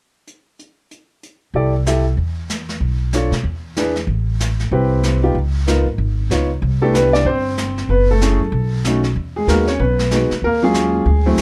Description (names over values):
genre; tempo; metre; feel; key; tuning
jazz piano trio; 189 BPM; 4/4; swing 61% on 8ths; unclear; A4 = 440 Hz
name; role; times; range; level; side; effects
jazz brush drum kit; drums; 0.3-11.4 s; brushed snare drum, hi-hat, snare drum; -30 LUFS; equal; none
upright bass; bass; 1.5-11.4 s; F#1 to B2; -21 LUFS; equal; none
clear upright piano; melody; 1.6-11.4 s; Gb3 to E5; -20 LUFS; equal; none
room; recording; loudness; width
little or no reverb; lossy compression artefacts; -18 LUFS; mono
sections
0.3-1.5 A section; 1.5-6.6 B section; 6.6-11.4 C section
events
none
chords
0.3 N.C.; 1.5 C6; 2.8 Bm7b5; 3.4 E7; 4.1 Am7; 5.4 Db9; 6.6 Cmaj7; 7.9 F#m9; 8.5 B9; 9.2 Emaj7; 10.4 Ebm9